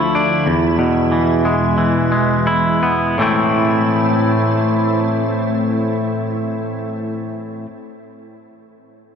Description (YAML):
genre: rock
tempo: 81-96 BPM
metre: 4/4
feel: straight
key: A harmonic minor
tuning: A4 = 442 Hz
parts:
  - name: soft additive organ-like pad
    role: sustained chords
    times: 0.0-6.9 s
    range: D2 to E4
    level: -21 LUFS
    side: right 1 dB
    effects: ensemble chorus, built-in reverb
  - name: twangy electric guitar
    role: arpeggios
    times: 0.0-7.7 s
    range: E2 to E4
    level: -16 LUFS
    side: left 1 dB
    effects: slapback echo
room: moderate huge ambient reverb, RT60 6.7 s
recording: none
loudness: -14 LUFS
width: side -7 dB against mid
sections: 0.0-3.2 A section; 3.2-6.2 B section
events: slowing down 0.0-3.2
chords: 0.5 E; 3.2 Am